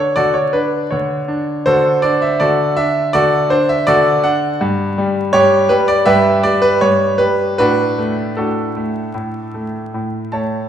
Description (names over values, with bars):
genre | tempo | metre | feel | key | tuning
classical-period piano sonatina | 76-82 BPM | 4/4 | rubato | D major | A4 = 441 Hz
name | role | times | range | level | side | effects
clear concert grand piano | solo | 0.0-10.7 s | G2 to A5 | -13 LUFS | equal | none
room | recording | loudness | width
wet recital hall reverb, RT60 1.8 s | recorded in a church or concert hall, vinyl crackle | -13 LUFS | side -9 dB against mid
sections
0.0-10.7 A section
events
none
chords
0.0 D; 4.6 N.C.; 6.1 G6; 7.6 D/A; 9.1 A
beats
0.17 0.92 | 1.67 2.41 3.15 3.88 | 4.61 5.34 6.07 6.81 | 7.58 8.37 9.15 9.94